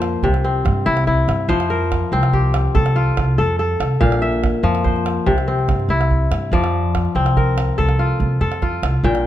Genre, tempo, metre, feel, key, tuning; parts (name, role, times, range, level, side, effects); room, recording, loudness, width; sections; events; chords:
west african traditional, West African string and xylophone music; 95 BPM (dotted quarters); 12/8; straight; F major; A4 = 440 Hz
kora; arpeggios; 0.0-9.3 s; Bb2 to G5; -19 LUFS; left 2 dB
upright bass; bass; 0.0-9.3 s; Bb1 to G2; -19 LUFS; equal
calabash; percussion; 0.0-9.2 s; -23 LUFS; right 3 dB
light reverb; dark, warm production; -15 LUFS; side -12 dB against mid
0.0-6.5 A section; 6.5-9.3 B section
0.2 C; 1.5 F; 4.0 Bb5; 5.3 C; 6.5 F